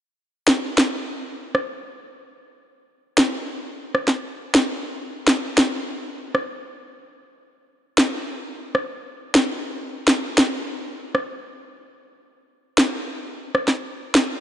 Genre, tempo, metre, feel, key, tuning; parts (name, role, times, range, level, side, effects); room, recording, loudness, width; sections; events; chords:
dancehall; 100 BPM; 4/4; swing 56% on 16ths
electronic snare drum and rim click; drums; 0.5-14.3 s; -20 LUFS; equal
moderate lush hall reverb, RT60 2.8 s; dark, warm production, nothing above 11.0 kHz; -20 LUFS; side -11 dB against mid
0.0-14.4 A section
break 0.0-9.5